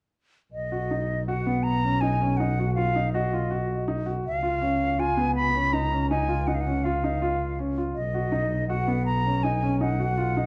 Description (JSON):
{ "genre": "contemporary instrumental, chamber music in an uneven meter", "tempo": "162 BPM", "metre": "5/4", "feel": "straight", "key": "B lydian", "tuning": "A4 = 440 Hz", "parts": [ { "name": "bright reedy concert flute", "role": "melody", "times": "0.5-10.5 s", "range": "D#5 to B5", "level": "-30 LUFS", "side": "equal", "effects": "none" }, { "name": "dark double bass", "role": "bass", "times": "0.5-10.5 s", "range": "B1 to C#2", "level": "-30 LUFS", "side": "equal", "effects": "none" }, { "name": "clear baby grand piano", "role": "arpeggios", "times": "0.7-10.5 s", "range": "B3 to F#4", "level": "-30 LUFS", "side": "equal", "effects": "none" } ], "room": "moderate recital hall reverb, RT60 1.6 s", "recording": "worn, warbling old tape, cassette tape, warbly pitch drift", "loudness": "-26 LUFS", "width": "mono", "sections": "0.5-10.5 A section", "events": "none", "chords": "0.5 B; 4.2 C#; 8.0 B" }